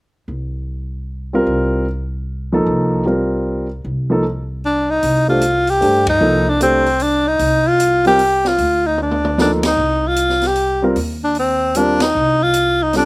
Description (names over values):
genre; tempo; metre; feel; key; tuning
modal jazz; 152 BPM; 3/4; swing 65% on 8ths; C dorian; A4 = 440 Hz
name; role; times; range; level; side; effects
upright bass; bass; 0.3-13.1 s; C2 to G2; -23 LUFS; equal; none
warm concert grand piano; accompaniment; 1.3-13.1 s; F3 to C5; -17 LUFS; equal; none
warm tenor saxophone; melody; 4.7-13.1 s; C4 to G4; -14 LUFS; equal; none
open jazz drum kit; drums; 5.0-13.1 s; hi-hat, kick drum, ride cymbal, snare drum, toms; -25 LUFS; equal; none
room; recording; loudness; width
little or no reverb; recorded outdoors, with no room sound; -14 LUFS; side -25 dB against mid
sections
0.3-5.0 A section; 5.0-13.1 B section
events
band accent 6.0, 9.6, 11.9; drum fill 9.0-9.4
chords
0.3 Cm7; 5.0 Cm9; 9.8 Cm7; 12.1 G5/C